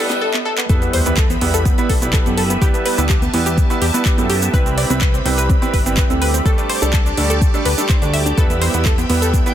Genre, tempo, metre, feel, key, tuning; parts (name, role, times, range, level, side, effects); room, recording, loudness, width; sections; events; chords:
progressive house; 125 BPM; 4/4; straight; E minor; A4 = 440 Hz
filtered supersaw swell; sustained chords; 0.0-9.5 s; D2 to E6; -26 LUFS; right 1 dB; phaser, sidechain pumping
analog pluck; arpeggios; 0.0-9.5 s; B3 to E5; -22 LUFS; equal; chorus, cassette tape, sidechain pumping, dub echo
clear grand piano; stabs; 0.0-9.5 s; G3 to B4; -22 LUFS; right 3 dB; sidechain pumping, dub echo
riser and sub drop; sound effects; 0.0-2.6 s; -25 LUFS; left 1 dB
house drum kit; drums; 0.1-9.5 s; cabasa, handclaps, hi-hat, snare drum; -23 LUFS; right 2 dB
fat analog bass; bass; 0.7-9.4 s; G1 to F#2; -20 LUFS; equal; tube saturation, sidechain pumping
electronic kick drum; drums; 0.7-9.4 s; -16 LUFS; equal; high-pass filter on kick
twinkling granular texture; texture; 8.8-9.5 s; G5; -32 LUFS; left 1 dB; built-in reverb, sidechain pumping
little or no reverb; dense, heavily limited modern master, high-pass filter; -14 LUFS; side -11 dB against mid
0.7-9.5 A section
drum fill 0.0, 0.3-0.7; riser 0.0; drop 0.7-9.5; impact 0.7-2.6
0.0 Dsus4; 0.7 Em; 4.5 Cmaj7; 6.5 Dsus4; 8.4 Em